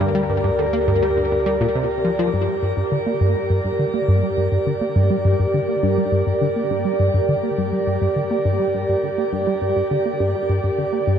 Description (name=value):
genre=ambient, sequencer-driven space music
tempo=103 BPM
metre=4/4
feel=straight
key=G minor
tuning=A4 = 437 Hz
part: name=sweeping resonant pad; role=sustained chords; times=0.0-11.2 s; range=D3 to D5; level=-20 LUFS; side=right 1 dB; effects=chorus, shimmer reverb
part: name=tight sequenced synth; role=riff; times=0.0-11.2 s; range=G2 to Bb3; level=-20 LUFS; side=left 1 dB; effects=chorus, phaser, ping-pong delay, shimmer reverb
part: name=fat analog bass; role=bass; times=0.0-2.3 s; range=D2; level=-30 LUFS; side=equal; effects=none
room=wet huge ambient reverb, RT60 8.6 s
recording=none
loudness=-17 LUFS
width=side -8 dB against mid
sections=0.0-2.3 A section; 2.3-11.2 B section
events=filter sweep on synth arpeggio sound 2.3-11.2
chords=0.0 Gm/D; 2.3 Gm